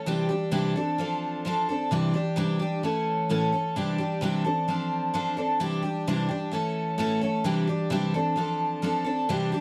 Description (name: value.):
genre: rock.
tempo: 130 BPM.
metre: 4/4.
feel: straight.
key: unclear.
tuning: A4 = 440 Hz.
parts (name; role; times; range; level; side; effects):
picked twelve-string acoustic guitar; solo; 0.0-9.6 s; A2 to A4; -27 LUFS; equal; none.
room: light reverb.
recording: dry, close 1970s-style studio recording.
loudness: -27 LUFS.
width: mono.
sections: 0.0-9.6 A section.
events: none.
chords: 0.1 Cadd9; 0.8 F6; 1.9 Cadd9; 2.8 A; 3.8 Cadd9; 4.4 F6; 5.6 Cadd9; 6.5 A; 7.4 Cadd9; 8.1 F6.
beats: | 0.06 0.52 0.98 1.45 | 1.91 2.37 2.83 3.29 | 3.75 4.22 4.68 5.14 | 5.60 6.06 6.52 6.99 | 7.45 7.91 8.37 8.83 | 9.29.